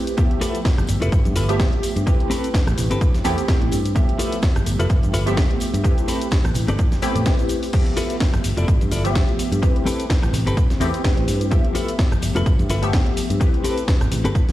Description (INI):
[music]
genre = filtered disco house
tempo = 127 BPM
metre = 4/4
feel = swing 56% on 16ths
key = A minor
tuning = A4 = 444 Hz
[part]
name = funky polysynth comp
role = accompaniment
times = 0.0-14.5 s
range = F3 to E5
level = -25 LUFS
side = equal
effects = chorus, phaser, sidechain pumping
[part]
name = house drum kit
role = drums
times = 0.1-14.5 s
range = crash cymbal, hi-hat, rim click, shaker, snare drum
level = -28 LUFS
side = left 1 dB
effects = sidechain pumping on hats, sidechain pumping on perc, sidechain pumping on cymbals
[part]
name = tambourine and congas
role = percussion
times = 0.1-14.5 s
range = none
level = -33 LUFS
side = right 2 dB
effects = sidechain pumping on perc
[part]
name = electronic kick drum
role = drums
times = 0.2-14.5 s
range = none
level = -19 LUFS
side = equal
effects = none
[part]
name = clean electric guitar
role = riff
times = 0.4-14.4 s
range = C4 to D5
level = -26 LUFS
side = left 2 dB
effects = tremolo, sidechain pumping
[part]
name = fingered electric bass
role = bass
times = 0.8-14.3 s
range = F1 to A2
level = -22 LUFS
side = equal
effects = sidechain pumping
[sound]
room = little or no reverb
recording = played on a big sound system in a bare room, stone room reverb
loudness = -17 LUFS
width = side -15 dB against mid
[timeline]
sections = 0.0-14.5 A section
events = none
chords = 0.2 G13; 2.1 Am9; 4.0 G13; 5.8 Am9; 7.7 G13; 9.6 Am9; 11.5 G13; 13.4 Am9